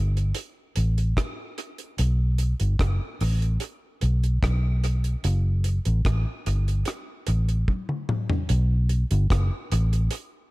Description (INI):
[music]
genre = roots reggae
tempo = 74 BPM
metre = 4/4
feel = straight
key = unclear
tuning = A4 = 440 Hz
[part]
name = vintage muted fingered electric bass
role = bass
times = 0.0-10.1 s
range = F#1 to B1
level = -21 LUFS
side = equal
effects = none
[part]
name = deep reggae drum kit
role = drums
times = 0.2-10.3 s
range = hi-hat, kick drum, rim click, toms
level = -28 LUFS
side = equal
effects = analog delay
[sound]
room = little or no reverb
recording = echo-heavy mix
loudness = -22 LUFS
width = side -21 dB against mid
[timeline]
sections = 0.0-8.5 A section; 8.5-10.5 B section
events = drum fill 7.7-8.5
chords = none